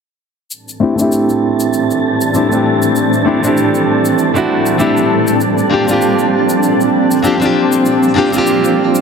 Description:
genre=sunset chillout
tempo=98 BPM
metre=4/4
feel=swing 57% on 16ths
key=unclear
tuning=A4 = 441 Hz
part: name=shimmering ambient pad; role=sustained chords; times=1.1-9.0 s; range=A2 to D4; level=-15 LUFS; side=right 2 dB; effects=chorus, built-in reverb
part: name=shaker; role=drums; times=0.5-9.0 s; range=none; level=-27 LUFS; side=left 3 dB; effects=none
part: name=wind-like tuned noise texture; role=texture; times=1.2-9.0 s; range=A4 to A5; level=-21 LUFS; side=left 1 dB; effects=built-in reverb
part: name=nylon-string guitar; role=accompaniment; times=0.8-9.0 s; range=A3 to G4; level=-13 LUFS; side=moving between left 6 dB and right 6 dB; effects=auto-pan, low-pass filter, digital delay
room=moderate plate reverb, RT60 2.2 s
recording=heavily compressed radio sound, multiband compression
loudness=-11 LUFS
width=side -6 dB against mid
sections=0.5-9.0 A section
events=filter sweep on nylon-string guitar 0.5-9.0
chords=0.5 D9sus4; 5.4 C9sus4

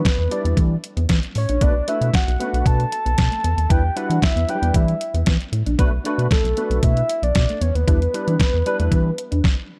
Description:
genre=early-eighties boogie funk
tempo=115 BPM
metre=4/4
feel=straight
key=unclear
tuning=A4 = 440 Hz
part: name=soft octave-layered synth lead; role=melody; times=0.0-9.4 s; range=A4 to A5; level=-27 LUFS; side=equal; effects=chorus, slapback echo
part: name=crisp 8-bit digital drum machine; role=drums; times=0.1-9.6 s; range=hi-hat, kick drum, snare drum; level=-22 LUFS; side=equal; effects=none
part: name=mellow electric guitar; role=riff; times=0.2-9.4 s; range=A3 to E4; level=-33 LUFS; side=equal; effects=subtle chorus
part: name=rubbery square bass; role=bass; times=0.2-9.4 s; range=A#1 to E3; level=-22 LUFS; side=equal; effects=none
part: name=barky tine electric piano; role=accompaniment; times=0.3-9.1 s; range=F#3 to D5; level=-30 LUFS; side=equal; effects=overdrive, ensemble chorus
room=little or no reverb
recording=dark, warm production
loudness=-20 LUFS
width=mono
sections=0.0-9.8 A section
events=none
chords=0.0 Em7; 1.6 Bm7; 3.7 Em7; 5.8 Bm7; 7.9 Em7

